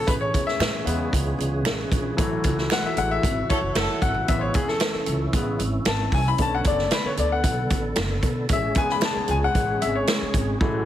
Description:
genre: uptempo 1960s-style soul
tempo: 114 BPM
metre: 4/4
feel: straight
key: A major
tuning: A4 = 440 Hz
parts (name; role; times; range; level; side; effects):
- clear baby grand piano; accompaniment; 0.0-10.9 s; C#3 to B5; -26 LUFS; left 3 dB; none
- tonewheel organ; sustained chords; 0.0-10.9 s; D3 to A4; -30 LUFS; right 1 dB; chorus vibrato, stopped rotary speaker
- upright bass; bass; 0.1-10.8 s; F#1 to B2; -27 LUFS; equal; none
- swinging big-band drum kit; drums; 0.1-10.7 s; hi-hat, kick drum, snare drum; -25 LUFS; right 1 dB; none
- finger snap; percussion; 0.6-10.2 s; none; -36 LUFS; right 5 dB; none
- clear horn section; second line; 3.5-4.1 s; E4 to A4; -29 LUFS; right 2 dB; none
room: light reverb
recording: heavily compressed radio sound, multiband compression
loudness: -21 LUFS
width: side -11 dB against mid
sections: 0.0-10.9 A section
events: grand piano solo 0.0-10.9; band accent 2.2-4.3; drum fill 10.6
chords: 0.1 Amaj7; 2.2 F#m7/A; 4.3 Amaj7; 6.4 Bm7; 8.5 Amaj7

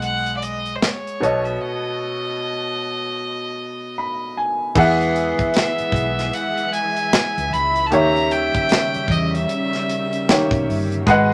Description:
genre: R&B, neo-soul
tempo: 76 BPM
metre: 4/4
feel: swing 59% on 16ths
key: E major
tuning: A4 = 439 Hz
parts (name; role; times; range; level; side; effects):
- bright fiddle; melody; 0.0-10.7 s; C5 to B5; -26 LUFS; equal; none
- bright grand piano; accompaniment; 0.0-11.3 s; B2 to B5; -23 LUFS; equal; none
- hollow-body short-scale fingered electric bass; bass; 0.0-11.3 s; G1 to E2; -28 LUFS; equal; none
- tight funk drum kit; drums; 0.0-11.3 s; crash cymbal, hi-hat, kick drum, snare drum; -24 LUFS; equal; none
- dark studio string section; sustained chords; 4.8-11.3 s; B2 to E5; -30 LUFS; equal; none
room: moderate studio reverb, RT60 0.5 s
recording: none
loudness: -20 LUFS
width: mono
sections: 0.0-4.8 A section; 4.8-11.3 B section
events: break 1.6-4.8; grand piano fill 3.6-4.8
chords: 0.0 G#m7; 1.2 B9; 4.8 E; 7.9 D#7b9

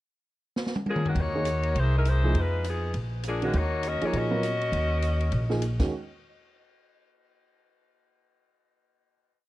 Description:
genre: jazz, big band swing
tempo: 202 BPM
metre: 4/4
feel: swing 61% on 8ths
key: Eb minor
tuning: A4 = 440 Hz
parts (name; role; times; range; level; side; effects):
- swinging big-band drum kit; drums; 0.6-5.9 s; crash cymbal, hi-hat, kick drum, ride cymbal, snare drum, toms; -33 LUFS; equal; none
- mellow saxophone section; melody; 0.9-5.6 s; D3 to Eb5; -30 LUFS; left 2 dB; tape echo
- upright bass; bass; 1.2-5.9 s; Bb1 to Bb2; -26 LUFS; equal; none
- warm concert grand piano; accompaniment; 1.4-5.9 s; Eb3 to Db5; -30 LUFS; right 2 dB; none
room: light reverb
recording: cassette tape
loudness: -24 LUFS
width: side -16 dB against mid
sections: 0.0-1.2 pickup bar; 1.2-5.9 A section; 5.9-7.1 final hit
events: drum fill 0.6-1.2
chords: 0.0 N.C.; 1.2 Ebm7; 1.8 C7alt; 2.4 Fm7b5; 2.9 Bb7b13; 3.5 Ebm7; 5.9 N.C.

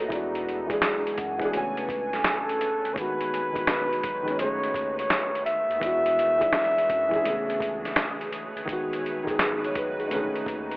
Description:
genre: lo-fi hip hop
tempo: 84 BPM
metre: 4/4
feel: swing 65% on 16ths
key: unclear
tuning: A4 = 440 Hz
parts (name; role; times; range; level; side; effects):
- felt-muted upright piano; accompaniment; 0.0-10.8 s; C#3 to G#5; -29 LUFS; equal; cassette tape
- granular cloud pad; sustained chords; 0.0-10.8 s; D#3 to G#5; -35 LUFS; equal; built-in reverb
- round analog bass; bass; 0.0-10.8 s; G1 to F#2; -44 LUFS; equal; none
- lo-fi sampler-style drum kit; drums; 0.0-10.8 s; hi-hat, kick drum, snare drum; -29 LUFS; equal; none
- vibraphone with soft mallets; second line; 1.2-2.9 s; C#4 to F#5; -33 LUFS; equal; tape echo
- breathy flugelhorn; melody; 2.3-8.3 s; A4 to E5; -25 LUFS; equal; none
room: light reverb, studio reverb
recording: cassette tape, telephone sound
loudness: -24 LUFS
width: side -23 dB against mid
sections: 0.0-10.8 A section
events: none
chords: 0.1 E9; 1.5 Amaj9; 3.0 G#m7; 4.4 B13; 5.8 E9; 7.2 Amaj9; 8.7 G#m7; 10.1 B13

